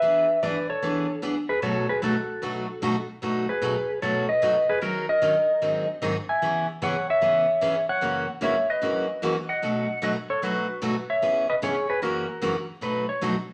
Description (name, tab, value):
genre	country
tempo	150 BPM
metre	4/4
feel	swing 67% on 8ths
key	B mixolydian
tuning	A4 = 440 Hz
part	clean lap steel guitar	melody	0.0-13.2 s	F#4 to G#5	-26 LUFS	equal	none
part	picked steel-string acoustic guitar	accompaniment	0.0-13.3 s	F#2 to A#4	-30 LUFS	equal	none
room	wet studio reverb, RT60 0.8 s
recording	none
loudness	-25 LUFS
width	mono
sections	0.0-12.8 A section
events	none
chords	0.0 E7; 1.6 B7; 4.8 D#m7; 5.6 G#7; 6.4 C#m7; 8.0 F#7; 9.6 B7; 11.2 C#m7; 12.0 F#7; 12.8 B7